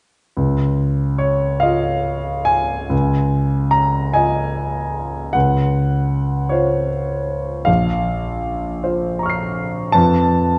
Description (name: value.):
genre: classical, impressionist solo piano.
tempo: 44-54 BPM (dotted quarters).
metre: 6/8.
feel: rubato.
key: Db major.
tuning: A4 = 440 Hz.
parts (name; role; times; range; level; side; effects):
clear concert grand piano; solo; 0.4-10.6 s; Bb1 to C7; -18 LUFS; equal; none.
room: wet scoring stage reverb, RT60 1.8 s.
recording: dark, warm production, nothing above 10.4 kHz.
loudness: -19 LUFS.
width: mono.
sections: 0.4-2.9 A section; 2.9-10.6 B section.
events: none.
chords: 0.4 Dbadd9; 5.3 Gb5/Db; 7.7 Bbmadd9; 10.0 F.